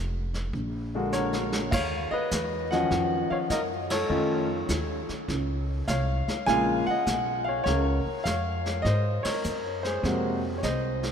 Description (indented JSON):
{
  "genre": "jazz piano trio",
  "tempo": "101 BPM",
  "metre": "4/4",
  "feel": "swing 67% on 8ths",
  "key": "Eb minor",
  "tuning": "A4 = 437 Hz",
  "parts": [
    { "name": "upright bass", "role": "bass", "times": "0.0-11.1 s", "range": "F1 to Ab2", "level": "-30 LUFS", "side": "right 1 dB", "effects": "none" },
    { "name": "vintage brush drum kit", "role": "drums", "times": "0.3-11.1 s", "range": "brushed snare drum, crash cymbal, hi-hat, kick drum, ride cymbal, snare drum", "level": "-34 LUFS", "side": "right 1 dB", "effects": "none" },
    { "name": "warm concert grand piano", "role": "melody", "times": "0.9-11.1 s", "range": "C3 to Ab5", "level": "-26 LUFS", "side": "left 1 dB", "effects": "none" }
  ],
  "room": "wet cathedral reverb, RT60 5.0 s",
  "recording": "in a vast, echoing space",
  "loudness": "-25 LUFS",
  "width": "side -7 dB against mid",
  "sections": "0.0-1.7 A section; 1.7-11.1 B section",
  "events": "drum fill 1.1-1.7; band accent 3.8, 9.1",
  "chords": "0.0 N.C.; 0.5 Bb7alt; 1.7 Ebm9; 4.1 F7b13; 6.5 Bbm7; 8.8 Ab9"
}